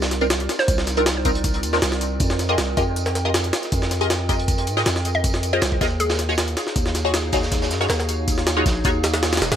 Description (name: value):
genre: drum and bass, jungle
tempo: 158 BPM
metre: 4/4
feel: straight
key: unclear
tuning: A4 = 445 Hz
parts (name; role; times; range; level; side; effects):
- hollow square pluck; melody; 0.0-1.0, 5.1-6.3 s; Ab4 to Eb5; -28 LUFS; right 1 dB; chorus, dub echo
- warbly tape-like pad; sustained chords; 0.0-9.6 s; C4 to G5; -28 LUFS; right 1 dB; chorus, built-in reverb
- long sustained 808-style bass; bass; 0.0-9.6 s; Eb1 to Ab2; -24 LUFS; equal; none
- crunchy breakbeat drum kit; drums; 0.0-9.5 s; hi-hat, snare drum, tambourine; -30 LUFS; right 3 dB; high-pass filter on hats, high-pass filter on snare, high-pass filter on perc, high-pass filter on room
- jungle sampler-style drum kit; drums; 0.0-9.6 s; hi-hat, kick drum, snare drum; -22 LUFS; equal; none
- filtered dub chord stab; stabs; 0.2-8.9 s; C4 to Eb5; -25 LUFS; left 1 dB; phaser, analog chorus, dub echo
room: studio ambience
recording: vinyl crackle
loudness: -18 LUFS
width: side -9 dB against mid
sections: 0.0-9.6 A section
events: none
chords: 0.0 Cm11; 2.2 Fm11; 6.0 Ebm11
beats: 0.30 | 0.68 1.06 1.44 1.82 | 2.20 2.58 2.96 3.34 | 3.72 4.10 4.48 4.86 | 5.24 5.62 6.00 6.38 | 6.76 7.14 7.52 7.90 | 8.28 8.66 9.04 9.42